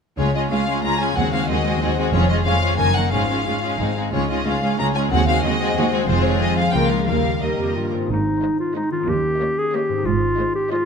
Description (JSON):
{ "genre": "classical, dramatic, fast romantic movement for symphony orchestra", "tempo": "183 BPM", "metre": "3/4", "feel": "rubato", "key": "Db major, Ab major from 6.1 s", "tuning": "A4 = 440 Hz", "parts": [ { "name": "warm symphonic violin section", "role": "melody", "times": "0.2-10.9 s", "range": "C5 to Bb5", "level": "-24 LUFS", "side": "left 4 dB", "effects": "none" }, { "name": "rich symphonic violin section", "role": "second line", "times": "0.2-10.9 s", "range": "Eb4 to Db5", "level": "-26 LUFS", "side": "left 2 dB", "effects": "none" }, { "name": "warm symphonic viola section", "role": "accompaniment", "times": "0.2-10.9 s", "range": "Eb3 to Db4", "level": "-26 LUFS", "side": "right 2 dB", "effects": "none" }, { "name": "concert harp", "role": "arpeggios", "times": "0.2-10.9 s", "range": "F2 to G5", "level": "-25 LUFS", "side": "left 9 dB", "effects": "none" }, { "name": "clear studio double bass section", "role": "bass", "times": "0.2-10.3 s", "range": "F1 to Eb2", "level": "-25 LUFS", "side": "right 4 dB", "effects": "none" }, { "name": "clear symphonic cello section", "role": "bass", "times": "0.2-10.3 s", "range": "Db2 to Ab2", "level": "-25 LUFS", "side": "right 4 dB", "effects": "none" }, { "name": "clear clarinet", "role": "second line", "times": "7.6-10.9 s", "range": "Eb4 to Ab4", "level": "-21 LUFS", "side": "equal", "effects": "none" } ], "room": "light reverb", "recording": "close, detailed microphones", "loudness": "-17 LUFS", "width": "side -6 dB against mid", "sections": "0.2-8.1 A section; 8.1-10.9 B section", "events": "none", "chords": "0.2 Db; 1.2 Ab7/Eb; 2.1 Db/F; 2.8 Ebm/Gb; 3.1 Db/Ab; 3.8 Ab; 4.1 Db; 5.1 Ab7/Eb; 6.1 Fm; 6.7 Bbm7/Db; 7.1 Eb; 8.1 Ab; 9.1 Eb7; 10.1 Ab" }